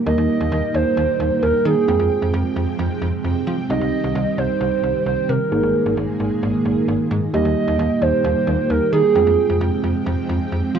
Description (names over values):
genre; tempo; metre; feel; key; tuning
synth-pop; 132 BPM; 4/4; straight; unclear; A4 = 440 Hz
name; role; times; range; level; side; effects
muted felt-like synth keys; accompaniment; 0.0-10.8 s; G3 to G5; -25 LUFS; equal; chorus, cassette tape
string machine, cellos; sustained chords; 0.0-10.8 s; Eb3 to G5; -22 LUFS; right 2 dB; ensemble chorus, cassette tape
hollow clarinet-like synth lead; melody; 0.1-9.6 s; Ab4 to Eb5; -20 LUFS; right 4 dB; chorus, analog delay
slap-like FM bass; bass; 0.1-10.8 s; Ab1 to F3; -22 LUFS; equal; none
room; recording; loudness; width
wet booth ambience, RT60 0.2 s; home recording on cassette; -17 LUFS; side -7 dB against mid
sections
0.1-10.8 A section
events
none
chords
0.1 Eb; 1.9 Fmadd9; 3.7 Cm; 5.5 Absus2; 7.3 Eb; 9.2 Fmadd9